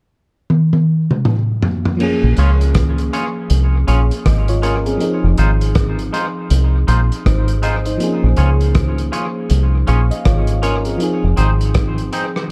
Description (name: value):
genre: lovers rock reggae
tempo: 80 BPM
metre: 4/4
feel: swing 62% on 16ths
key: Bb minor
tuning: A4 = 440 Hz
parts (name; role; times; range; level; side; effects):
- vintage drum kit; drums; 0.5-12.5 s; crash cymbal, hi-hat, kick drum, rim click, toms; -21 LUFS; equal; none
- FM electric piano; accompaniment; 2.0-12.5 s; F3 to F5; -24 LUFS; equal; chorus
- deep dub fingered electric bass; bass; 2.2-12.1 s; F1 to Db2; -17 LUFS; equal; none
- twangy electric guitar; stabs; 2.4-12.3 s; Ab3 to Db5; -27 LUFS; equal; tape echo
room: light reverb, small room reverb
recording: dark, warm production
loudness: -16 LUFS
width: mono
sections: 0.0-2.0 A section; 2.0-12.5 B section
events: drum fill 0.5-2.0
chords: 0.0 N.C.; 2.0 Bbm7; 5.0 Fm7; 8.0 Bbm7; 11.0 Fm7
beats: 0.50 1.25 | 2.00 2.75 3.50 4.25 | 5.00 5.75 6.50 7.25 | 8.00 8.76 9.51 10.26 | 11.01 11.76 12.51